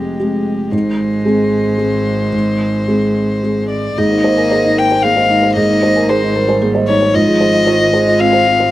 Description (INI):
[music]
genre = neoclassical piano and strings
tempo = 114 BPM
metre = 3/4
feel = rubato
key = unclear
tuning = A4 = 443 Hz
[part]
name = warm violin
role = melody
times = 0.0-8.7 s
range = G4 to G5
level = -16 LUFS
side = left 3 dB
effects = none
[part]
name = warm cello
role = second line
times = 0.0-8.7 s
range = Eb3 to Bb3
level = -22 LUFS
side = right 4 dB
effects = none
[part]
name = felt-muted upright piano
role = accompaniment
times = 0.0-8.7 s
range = F2 to C5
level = -15 LUFS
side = equal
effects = none
[part]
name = rich double bass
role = bass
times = 0.0-8.7 s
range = F1 to Ab1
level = -22 LUFS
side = equal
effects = none
[part]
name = folk marimba with medium mallets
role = arpeggios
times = 4.0-8.5 s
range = F4 to Ab5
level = -20 LUFS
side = right 5 dB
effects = none
[sound]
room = little or no reverb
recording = recorded outdoors, with no room sound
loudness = -11 LUFS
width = side -14 dB against mid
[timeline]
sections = 0.0-4.0 A section; 4.0-8.7 B section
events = none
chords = 0.0 Fmadd9; 0.7 Ab; 4.0 Abadd9; 7.1 Fm7/Ab